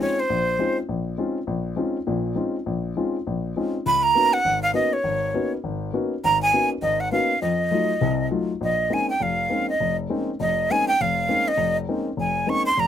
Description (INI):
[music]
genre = jazz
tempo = 202 BPM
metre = 4/4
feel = swing 60% on 8ths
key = Eb minor, Bb dorian from 8.6 s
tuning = A4 = 440 Hz
[part]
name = breathy bright jazz flute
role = melody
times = 0.0-0.8, 3.9-12.9 s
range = C5 to Db6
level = -21 LUFS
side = right 2 dB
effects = none
[part]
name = warm baby grand piano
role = accompaniment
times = 0.0-12.9 s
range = F1 to Gb4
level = -24 LUFS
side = left 3 dB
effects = none
[sound]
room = little or no reverb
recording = close, detailed microphones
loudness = -20 LUFS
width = side -10 dB against mid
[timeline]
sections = 0.0-8.6 A section; 8.6-12.9 B section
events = flute solo 8.6-12.9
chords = 0.0 Eb13sus4; 3.9 Db13sus4; 7.4 F7b9; 8.6 Bbm11